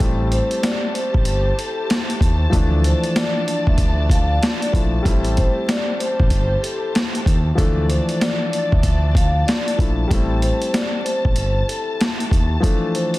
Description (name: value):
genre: hip hop, boom-bap hip-hop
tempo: 95 BPM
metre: 4/4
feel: swing 61% on 16ths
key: D minor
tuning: A4 = 441 Hz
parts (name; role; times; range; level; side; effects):
- dark concert grand piano; accompaniment; 0.0-13.2 s; E3 to E4; -25 LUFS; left 2 dB; cassette tape, high-pass filter, low-pass filter
- dark studio string section; sustained chords; 0.0-13.2 s; D4 to A5; -30 LUFS; left 1 dB; high-pass filter, low-pass filter
- smooth gliding synth bass; bass; 0.0-12.6 s; G1 to Eb2; -20 LUFS; equal; none
- boom bap sampler-style drum kit; drums; 0.0-13.2 s; hi-hat, kick drum, snare drum; -19 LUFS; equal; none
- vibraphone with soft mallets; melody; 0.3-13.2 s; A4 to F5; -25 LUFS; left 1 dB; high-pass filter, low-pass filter
room: little or no reverb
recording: dense, heavily limited modern master, vinyl crackle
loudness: -16 LUFS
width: side -18 dB against mid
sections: 0.0-13.2 A section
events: none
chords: 0.0 Am7; 2.5 Dmadd9; 5.1 Am7; 7.6 Dmadd9; 10.1 Am7; 12.6 Dmadd9